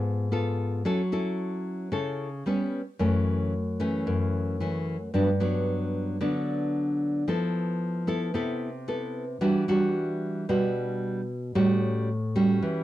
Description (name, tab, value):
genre	bossa nova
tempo	112 BPM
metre	4/4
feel	straight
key	unclear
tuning	A4 = 439 Hz
part	nylon-string guitar	solo	0.0-12.8 s	F#2 to A4	-25 LUFS	equal	none
room	moderate studio reverb, RT60 0.6 s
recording	dark, warm production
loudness	-25 LUFS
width	side -14 dB against mid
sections	0.0-12.8 A section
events	none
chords	0.0 C#7b13 (rootless); 0.8 F#m7; 2.5 G; 3.0 F#m7; 5.1 Gmaj7; 7.3 Fmaj7#11; 9.4 Em9; 11.5 A6